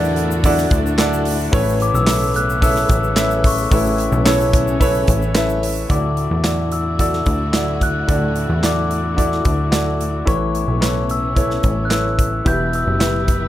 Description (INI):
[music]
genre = piano-driven pop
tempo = 110 BPM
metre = 4/4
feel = straight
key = D major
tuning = A4 = 439 Hz
[part]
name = glockenspiel with rubber mallets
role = melody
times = 0.0-13.5 s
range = C#6 to G6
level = -24 LUFS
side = left 3 dB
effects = none
[part]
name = clear concert grand piano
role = accompaniment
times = 0.0-13.5 s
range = A2 to E5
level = -20 LUFS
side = equal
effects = none
[part]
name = warm studio string section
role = sustained chords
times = 0.0-13.5 s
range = C#3 to B4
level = -29 LUFS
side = left 2 dB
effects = none
[part]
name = plucky analog bass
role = bass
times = 0.0-13.5 s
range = E1 to E2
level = -21 LUFS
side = equal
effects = none
[part]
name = tube shaker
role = percussion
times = 0.0-5.9 s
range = none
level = -35 LUFS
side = left 10 dB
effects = none
[part]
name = modern studio drum kit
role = drums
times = 0.2-13.4 s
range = handclaps, hi-hat, kick drum, snare drum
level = -20 LUFS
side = equal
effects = none
[sound]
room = light reverb, small room ambience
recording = none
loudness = -15 LUFS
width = side -13 dB against mid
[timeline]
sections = 0.0-5.9 A section; 5.9-13.5 B section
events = none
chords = 0.0 Dadd9; 1.5 Aadd9; 5.9 Dadd9; 10.3 Aadd9; 12.5 Em